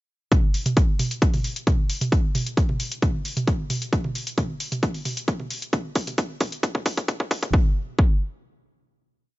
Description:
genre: techno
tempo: 133 BPM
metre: 4/4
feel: straight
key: none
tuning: none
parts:
  - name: electronic kick drum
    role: drums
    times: 0.3-8.1 s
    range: none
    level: -21 LUFS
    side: equal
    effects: overdrive
  - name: techno drum kit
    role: drums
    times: 0.3-7.5 s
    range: hi-hat, toms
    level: -28 LUFS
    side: right 1 dB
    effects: overdrive
room: digital ambience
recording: high-pass filter, nothing above 7.5 kHz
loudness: -21 LUFS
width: side -19 dB against mid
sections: 0.3-7.5 build; 7.5-9.4 final hit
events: build-up 0.3-7.5; filter sweep 0.3-7.5; drum fill 3.9-7.5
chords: none

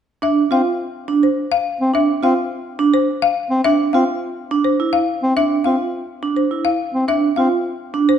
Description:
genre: classical, minimalist pattern music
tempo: 105 BPM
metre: 3/4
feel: straight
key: D minor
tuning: A4 = 439 Hz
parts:
  - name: folk marimba with hard mallets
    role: melody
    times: 0.2-8.2 s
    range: C5 to F5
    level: -20 LUFS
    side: left 8 dB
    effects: none
  - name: vibraphone with medium hard mallets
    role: arpeggios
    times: 0.2-8.1 s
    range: D4 to F4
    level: -18 LUFS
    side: right 5 dB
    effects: none
  - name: mellow bass clarinet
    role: accompaniment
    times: 0.5-7.5 s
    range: C4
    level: -20 LUFS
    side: left 1 dB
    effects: none
room: wet recital hall reverb, RT60 1.7 s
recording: dark, warm production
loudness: -16 LUFS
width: side -8 dB against mid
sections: 0.2-8.2 A section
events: none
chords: 0.2 Dm7

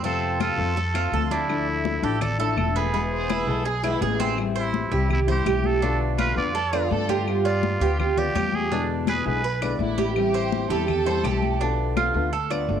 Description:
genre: latin, Cuban son and guajira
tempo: 166 BPM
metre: 4/4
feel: straight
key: A minor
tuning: A4 = 439 Hz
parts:
  - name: fingerpicked steel-string acoustic guitar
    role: accompaniment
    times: 0.0-12.8 s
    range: B2 to F4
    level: -29 LUFS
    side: left 10 dB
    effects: none
  - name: Cuban tres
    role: arpeggios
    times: 0.0-12.8 s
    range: B3 to D5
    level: -26 LUFS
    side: right 7 dB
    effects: none
  - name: upright bass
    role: bass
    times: 0.0-12.8 s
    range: E1 to G2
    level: -27 LUFS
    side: equal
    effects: none
  - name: congas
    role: percussion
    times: 0.0-12.8 s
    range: none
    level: -31 LUFS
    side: left 10 dB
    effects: none
  - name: trumpet with straight mute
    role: melody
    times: 0.1-9.8 s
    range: E4 to D5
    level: -28 LUFS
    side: right 1 dB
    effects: cassette tape
  - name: claves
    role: percussion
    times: 0.4-12.7 s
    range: none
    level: -37 LUFS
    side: left 10 dB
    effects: none
  - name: rich studio violin section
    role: second line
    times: 3.1-4.4, 6.7-7.4, 9.6-11.6 s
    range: D4 to C5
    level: -32 LUFS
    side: left 1 dB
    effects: none
room: moderate spring reverb, RT60 1.9 s, small room ambience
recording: home recording on cassette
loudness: -21 LUFS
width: side -8 dB against mid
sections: 0.0-4.4 A section; 4.4-12.8 B section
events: none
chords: 0.0 F; 1.5 Dmadd9; 2.9 E; 4.4 Am7; 5.8 Bm7b5; 7.3 G7; 8.7 E7; 10.2 Am7; 11.6 Bm7b5

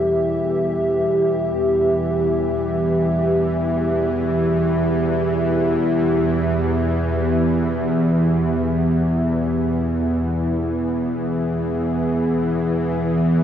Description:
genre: dark ambient drone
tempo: free time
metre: none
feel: none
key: E minor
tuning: A4 = 440 Hz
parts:
  - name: dark analog pad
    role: sustained chords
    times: 0.0-13.4 s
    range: B3 to E5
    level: -21 LUFS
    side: equal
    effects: chorus
  - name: dark detuned synth bell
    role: arpeggios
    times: 0.0-9.8 s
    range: D4 to A4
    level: -46 LUFS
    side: left 2 dB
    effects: none
  - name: bowed-like drone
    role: drone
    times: 0.0-13.4 s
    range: E2 to E3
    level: -20 LUFS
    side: equal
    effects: built-in reverb
room: wet huge ambient reverb, RT60 8.5 s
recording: nothing above 10.6 kHz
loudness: -18 LUFS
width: side -9 dB against mid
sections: 0.0-13.4 A section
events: fade-out on analog synth pad 0.0-13.4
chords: 0.0 Em; 9.8 G#m

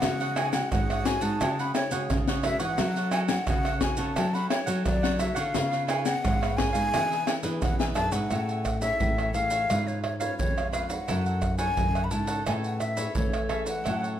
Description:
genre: samba and choro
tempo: 87 BPM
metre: 4/4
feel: straight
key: F# minor, A major from 8.3 s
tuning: A4 = 440 Hz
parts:
  - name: breathy jazz flute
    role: melody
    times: 0.0-14.1 s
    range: C#5 to B5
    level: -30 LUFS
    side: left 2 dB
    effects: none
  - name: cavaquinho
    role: accompaniment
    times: 0.0-14.2 s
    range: D4 to G#5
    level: -36 LUFS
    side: right 6 dB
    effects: none
  - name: nylon-string guitar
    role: accompaniment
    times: 0.0-14.2 s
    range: G#2 to B4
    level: -36 LUFS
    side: left 5 dB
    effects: none
  - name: nylon-string guitar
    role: bass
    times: 0.0-14.2 s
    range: E#2 to A3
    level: -31 LUFS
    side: equal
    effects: none
  - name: caixa, maracas, surdo, pandeiro, tamborim and agogo bells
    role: percussion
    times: 0.0-14.2 s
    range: none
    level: -28 LUFS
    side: right 1 dB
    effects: none
room: moderate large studio reverb, RT60 0.9 s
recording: none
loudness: -24 LUFS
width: side -10 dB against mid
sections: 0.0-8.3 A section; 8.3-14.2 B section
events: none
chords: 0.0 C#sus4; 2.8 F#m; 5.6 C#7; 6.9 E7; 8.3 Amaj7; 9.7 C#7/G#; 11.1 F#m7; 12.5 Amaj9

